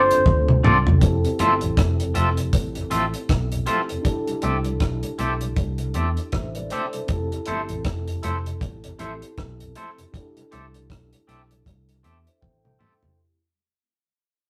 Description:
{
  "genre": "lovers rock reggae",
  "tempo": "79 BPM",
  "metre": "4/4",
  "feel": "swing 59% on 16ths",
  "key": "C major",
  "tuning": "A4 = 438 Hz",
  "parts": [
    { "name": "breathy flugelhorn", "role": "melody", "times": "0.0-0.6 s", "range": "C5", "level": "-21 LUFS", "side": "equal", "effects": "none" },
    { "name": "mellow tine electric piano", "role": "accompaniment", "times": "0.0-13.4 s", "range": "C4 to C6", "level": "-33 LUFS", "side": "equal", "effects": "none" },
    { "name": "vintage muted fingered electric bass", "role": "bass", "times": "0.0-12.8 s", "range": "F1 to E2", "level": "-28 LUFS", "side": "equal", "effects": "none" },
    { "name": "mellow tonewheel organ", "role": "accompaniment", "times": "0.1-13.1 s", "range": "F2 to F4", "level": "-37 LUFS", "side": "equal", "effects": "none" },
    { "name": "deep reggae drum kit", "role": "drums", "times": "0.1-13.2 s", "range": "hi-hat, kick drum, rim click, toms", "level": "-24 LUFS", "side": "equal", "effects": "none" },
    { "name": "twangy electric guitar", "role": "stabs", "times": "0.6-12.9 s", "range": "C4 to E5", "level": "-25 LUFS", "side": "equal", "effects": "tremolo" }
  ],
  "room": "moderate studio reverb, RT60 0.6 s",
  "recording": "rough rehearsal-room recording",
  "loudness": "-22 LUFS",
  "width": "mono",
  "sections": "0.0-1.0 A section; 1.0-13.2 B section",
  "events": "drum fill 0.3-1.0, 12.4-13.2; fade-out 1.0-13.2; tine electric piano fill 11.7-13.2",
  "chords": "0.0 G9sus4; 1.0 Fmaj7; 4.1 C6; 7.1 Fmaj7; 10.1 C6"
}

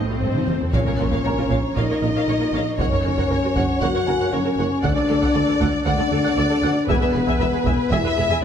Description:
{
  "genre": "cinematic, hybrid orchestral and electronic film score",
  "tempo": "117 BPM",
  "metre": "4/4",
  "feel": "straight",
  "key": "unclear",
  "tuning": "A4 = 439 Hz",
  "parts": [
    { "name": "warm symphonic violin section", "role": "melody", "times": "0.0-8.4 s", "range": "A4 to G#5", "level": "-33 LUFS", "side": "left 3 dB", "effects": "none" },
    { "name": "dark symphonic viola section", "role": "accompaniment", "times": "0.0-8.4 s", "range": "F3 to F#5", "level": "-28 LUFS", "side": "right 2 dB", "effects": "none" },
    { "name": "warm symphonic cello section", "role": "bass", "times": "0.0-8.4 s", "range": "D2 to A#2", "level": "-28 LUFS", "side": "right 3 dB", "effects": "none" },
    { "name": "swell and impact", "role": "sound effects", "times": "0.0-2.8 s", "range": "none", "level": "-29 LUFS", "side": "left 1 dB", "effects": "none" },
    { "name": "felt-muted upright piano", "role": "texture", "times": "0.0-8.4 s", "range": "A#4 to Eb6", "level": "-34 LUFS", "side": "left 2 dB", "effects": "digital delay" },
    { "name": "warm symphonic violin section", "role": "second line", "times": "0.2-8.4 s", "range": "B4 to F#5", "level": "-27 LUFS", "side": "left 1 dB", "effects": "none" },
    { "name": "dark French horn section", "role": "sustained chords", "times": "0.2-8.4 s", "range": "B3 to F#4", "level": "-22 LUFS", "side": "left 3 dB", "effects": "none" },
    { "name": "rich symphonic double bass section", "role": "bass", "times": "0.2-8.2 s", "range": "E1 to D2", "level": "-28 LUFS", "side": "right 4 dB", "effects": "none" },
    { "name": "taiko ensemble", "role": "drums", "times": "0.2-8.4 s", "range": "none", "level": "-26 LUFS", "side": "equal", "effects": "none" },
    { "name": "mellow tuba", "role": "bass", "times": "0.7-8.2 s", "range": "E1 to D2", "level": "-29 LUFS", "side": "right 3 dB", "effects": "none" }
  ],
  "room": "wet recital hall reverb, RT60 1.5 s",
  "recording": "none",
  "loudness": "-18 LUFS",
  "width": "side -8 dB against mid",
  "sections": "0.7-8.4 A section",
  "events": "swell 0.0-0.7; drum fill 0.2-0.7; impact 0.7-2.8",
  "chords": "0.0 F7; 0.7 A#m; 2.8 F#; 4.8 D; 6.9 E"
}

